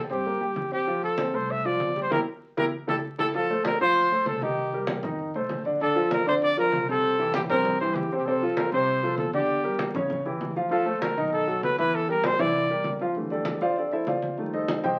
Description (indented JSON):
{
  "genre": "Afro-Cuban jazz",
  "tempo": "196 BPM",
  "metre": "4/4",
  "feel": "straight",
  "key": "F major, D minor from 3.3 s",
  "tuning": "A4 = 440 Hz",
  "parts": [
    { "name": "warm trumpet", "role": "melody", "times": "0.0-13.0 s", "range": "G4 to E5", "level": "-28 LUFS", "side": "equal", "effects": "none" },
    { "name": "warm grand piano", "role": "accompaniment", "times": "0.0-15.0 s", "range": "C3 to G5", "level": "-29 LUFS", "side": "equal", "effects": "none" },
    { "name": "upright bass", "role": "bass", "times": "0.0-15.0 s", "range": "A1 to G2", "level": "-42 LUFS", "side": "equal", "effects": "none" },
    { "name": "congas", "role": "percussion", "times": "0.1-15.0 s", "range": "none", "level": "-36 LUFS", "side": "equal", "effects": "none" }
  ],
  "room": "wet studio reverb, RT60 0.5 s",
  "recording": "very old 78 rpm record, vinyl crackle",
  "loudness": "-26 LUFS",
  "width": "mono",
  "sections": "0.0-3.3 A section; 3.3-13.2 B section; 13.2-15.0 C section",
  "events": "band accent 2.1-3.3; grand piano solo 13.2-15.0",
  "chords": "0.0 C5; 0.9 Fmaj13; 2.1 Edim; 2.7 A5; 3.3 Dm7; 4.6 Cm7; 5.2 F7; 5.8 Bbmaj7; 7.0 C7; 8.3 F6; 9.5 Em7b5; 10.1 A7; 10.7 Dm7; 11.3 B7; 11.9 Edim; 12.5 C9; 13.2 Fmaj13; 14.4 F9"
}